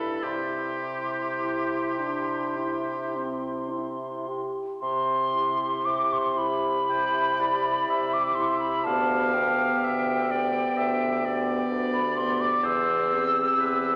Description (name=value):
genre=classical, slow romantic movement for wind quintet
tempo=51-65 BPM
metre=4/4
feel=rubato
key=C major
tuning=A4 = 442 Hz
part: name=hollow concert flute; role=melody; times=0.0-14.0 s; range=G5 to E6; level=-29 LUFS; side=equal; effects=none
part: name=clear oboe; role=second line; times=0.0-14.0 s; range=G4 to G5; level=-33 LUFS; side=equal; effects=none
part: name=bright clarinet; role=accompaniment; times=0.0-14.0 s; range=E4 to G4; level=-38 LUFS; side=equal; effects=none
part: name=clear French horn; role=accompaniment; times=0.0-14.0 s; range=B3 to G4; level=-36 LUFS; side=equal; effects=none
part: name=clear bassoon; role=bass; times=0.0-14.0 s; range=D2 to C3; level=-34 LUFS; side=equal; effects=none
room=wet concert hall reverb, RT60 2.3 s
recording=none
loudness=-26 LUFS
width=mono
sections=0.0-4.8 A section; 4.8-14.0 A section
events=none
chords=0.2 C; 8.9 G7/D; 12.6 C/E